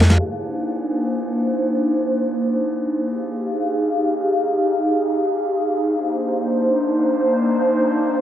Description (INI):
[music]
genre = drum and bass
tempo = free time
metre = none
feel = none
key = C minor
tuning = A4 = 439 Hz
[part]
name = airy breathy pad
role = sustained chords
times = 0.0-8.2 s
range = Bb3 to F5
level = -18 LUFS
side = equal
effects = chorus
[sound]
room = moderate digital room reverb, RT60 1.1 s, studio reverb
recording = heavily compressed radio sound, vinyl crackle, low-pass filter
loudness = -18 LUFS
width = side -11 dB against mid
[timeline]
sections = 0.2-8.2 A section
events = filter sweep on analog synth pad 0.2-8.2; filter sweep 0.2-8.2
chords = 0.2 Cm9; 3.0 Fm9; 5.9 Cm9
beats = free time